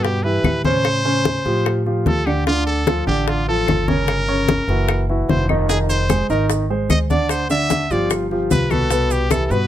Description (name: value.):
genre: Afro-Cuban jazz.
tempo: 149 BPM.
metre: 4/4.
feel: straight.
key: C major.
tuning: A4 = 440 Hz.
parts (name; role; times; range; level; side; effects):
brilliant trumpet; melody; 0.0-9.7 s; F4 to E5; -22 LUFS; equal; none.
warm grand piano; accompaniment; 0.0-9.7 s; B2 to Eb5; -21 LUFS; equal; none.
upright bass; bass; 0.0-9.7 s; F1 to A2; -22 LUFS; equal; none.
bongos; percussion; 0.0-9.7 s; none; -25 LUFS; left 6 dB; none.
congas; percussion; 0.0-9.7 s; none; -22 LUFS; left 2 dB; none.
claves; percussion; 0.4-9.5 s; none; -30 LUFS; left 7 dB; none.
maracas; percussion; 5.7-9.7 s; none; -32 LUFS; right 10 dB; none.
room: light reverb.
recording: close, detailed microphones.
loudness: -16 LUFS.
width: side -11 dB against mid.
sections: 0.0-9.7 A section.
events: none.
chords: 0.0 Cmaj7; 0.9 A7alt; 2.5 Dm; 4.1 Gdim; 4.9 Ebm69; 5.7 Fm7; 7.3 Dm; 8.1 G7; 8.9 Cmaj7.